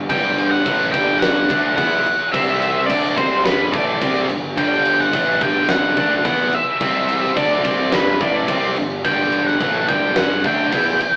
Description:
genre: quiet-loud alternative rock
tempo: 107 BPM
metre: 4/4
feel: straight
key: G major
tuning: A4 = 440 Hz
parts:
  - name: cranked stack guitar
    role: riff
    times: 0.0-11.0 s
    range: G2 to E4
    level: -24 LUFS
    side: equal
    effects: overdrive
  - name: distorted electric guitar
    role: riff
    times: 0.0-11.0 s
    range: G2 to E4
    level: -25 LUFS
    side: equal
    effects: overdrive
  - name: fuzz guitar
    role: riff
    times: 0.0-11.0 s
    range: G2 to E4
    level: -25 LUFS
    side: equal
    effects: distortion
  - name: fuzz picked electric bass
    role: bass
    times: 0.0-11.1 s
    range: G1 to E2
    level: -27 LUFS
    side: equal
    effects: overdrive
  - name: octave-fuzz lead guitar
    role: melody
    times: 0.1-11.2 s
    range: B4 to G5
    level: -18 LUFS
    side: equal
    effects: distortion
  - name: huge arena drum kit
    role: drums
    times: 0.1-11.1 s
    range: crash cymbal, kick drum, snare drum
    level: -22 LUFS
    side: equal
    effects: none
room: wet large studio reverb, RT60 0.8 s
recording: band playing live in one room, AM radio sound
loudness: -15 LUFS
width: side -39 dB against mid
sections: 0.0-11.2 A section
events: none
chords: 0.0 G; 2.3 C5; 2.9 G; 6.8 C5; 7.4 G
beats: | 0.10 0.66 1.22 1.78 | 2.34 2.90 3.46 4.02 | 4.58 5.14 5.70 6.25 | 6.81 7.37 7.93 8.49 | 9.05 9.61 10.17 10.73

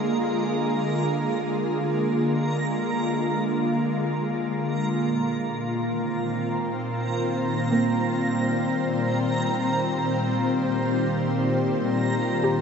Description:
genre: ambient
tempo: free time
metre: none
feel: none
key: unclear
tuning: A4 = 440 Hz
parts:
  - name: ethereal airy pad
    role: sustained chords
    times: 0.0-12.6 s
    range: Bb2 to C5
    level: -24 LUFS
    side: equal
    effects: ensemble chorus, built-in reverb, shimmer reverb
  - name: organ-like drone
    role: drone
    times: 0.0-12.6 s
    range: Bb3 to F4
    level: -30 LUFS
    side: left 1 dB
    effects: ensemble chorus, built-in reverb
  - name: backwards swelling texture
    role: texture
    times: 0.0-12.6 s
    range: Bb5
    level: -32 LUFS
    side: right 2 dB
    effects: built-in reverb, shimmer reverb
  - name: soft round pluck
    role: arpeggios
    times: 7.7-12.6 s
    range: Bb3 to G4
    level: -28 LUFS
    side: right 2 dB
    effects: chorus, diffuse ambient delay
room: wet lush hall reverb, RT60 2.8 s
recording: nothing above 8.0 kHz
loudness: -22 LUFS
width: side -6 dB against mid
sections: 0.0-12.6 A section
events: none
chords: 0.0 Bb7; 4.8 Cm/Bb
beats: free time

